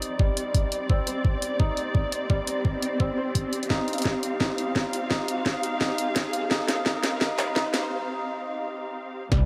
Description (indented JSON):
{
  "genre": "half-time drum and bass",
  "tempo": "171 BPM",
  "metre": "4/4",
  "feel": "swing 59% on 16ths, half-time",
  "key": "C minor",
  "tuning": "A4 = 440 Hz",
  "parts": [
    { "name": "muted symphonic string section", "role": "sustained chords", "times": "0.0-9.5 s", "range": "C3 to F5", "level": "-32 LUFS", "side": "equal", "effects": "sidechain pumping, low-pass filter" },
    { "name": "santur", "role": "arpeggios", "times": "0.0-9.5 s", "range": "G3 to C5", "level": "-34 LUFS", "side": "equal", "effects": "low-pass filter, dub echo" },
    { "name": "drum and bass drum kit", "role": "drums", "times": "0.0-9.4 s", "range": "hi-hat, snare drum", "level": "-30 LUFS", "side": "equal", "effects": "none" },
    { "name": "riser and impact", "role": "sound effects", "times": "0.1-9.5 s", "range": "none", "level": "-42 LUFS", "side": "equal", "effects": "none" },
    { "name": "electronic kick drum", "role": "drums", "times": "0.2-9.4 s", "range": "none", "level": "-27 LUFS", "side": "equal", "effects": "none" },
    { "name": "dark detuned saw bass", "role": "bass", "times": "9.3-9.5 s", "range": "C2", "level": "-24 LUFS", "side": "equal", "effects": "none" }
  ],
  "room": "moderate huge ambient reverb, RT60 4.6 s",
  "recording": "high-pass filter",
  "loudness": "-26 LUFS",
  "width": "mono",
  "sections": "0.0-9.3 A section",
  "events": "build-up 0.0-9.3; filter sweep 0.0-9.3; drum fill 3.7-7.9; break 7.9-9.3",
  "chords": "0.0 Cm"
}